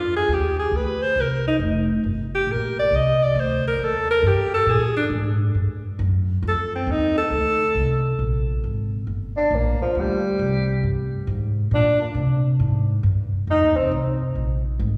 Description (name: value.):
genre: jazz, small-group swing and bop.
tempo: 136 BPM.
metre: 4/4.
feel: swing 65% on 8ths.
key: Bb mixolydian.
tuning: A4 = 440 Hz.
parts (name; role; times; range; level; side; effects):
clear alto saxophone; melody; 0.0-8.1 s; C4 to Eb5; -23 LUFS; equal; none.
upright bass; bass; 0.0-15.0 s; F1 to C3; -25 LUFS; equal; none.
mellow tenor saxophone; second line; 9.4-13.9 s; F3 to Eb4; -24 LUFS; equal; none.
room: wet concert hall reverb, RT60 2.2 s.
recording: recorded in a church or concert hall, studio ambience.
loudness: -22 LUFS.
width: mono.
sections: 0.0-8.2 A section; 8.2-15.0 A section.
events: alto saxophone solo 0.0-8.2; tenor saxophone solo 8.2-15.0.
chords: 0.0 G5; 1.2 C5; 2.9 Cm13; 4.7 Bb7(no3); 5.6 N.C.; 6.4 F6; 8.2 Bb13; 13.5 F5; 14.4 Absus2.